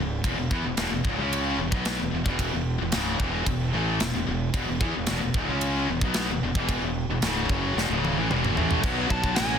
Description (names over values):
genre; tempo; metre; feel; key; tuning
heavy metal; 112 BPM; 4/4; straight; unclear; A4 = 440 Hz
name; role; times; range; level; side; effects
high-gain distorted guitar; riff; 0.0-9.6 s; C#2 to C#4; -30 LUFS; right 10 dB; distortion
tight distorted guitar; riff; 0.0-9.6 s; C#2 to C#4; -29 LUFS; left 12 dB; distortion
fuzz fingered electric bass; bass; 0.0-9.6 s; C#1 to E2; -30 LUFS; equal; overdrive
tight metal drum kit; drums; 0.2-9.5 s; crash cymbal, kick drum, ride cymbal, snare drum, toms; -28 LUFS; equal; none
high-gain lead guitar; melody; 9.1-9.6 s; G#5 to A5; -28 LUFS; right 2 dB; distortion
room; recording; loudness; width
studio ambience; dense, heavily limited modern master; -23 LUFS; side -8 dB against mid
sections
0.0-8.8 A section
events
drum fill 7.8-8.8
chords
0.2 E5; 8.8 B5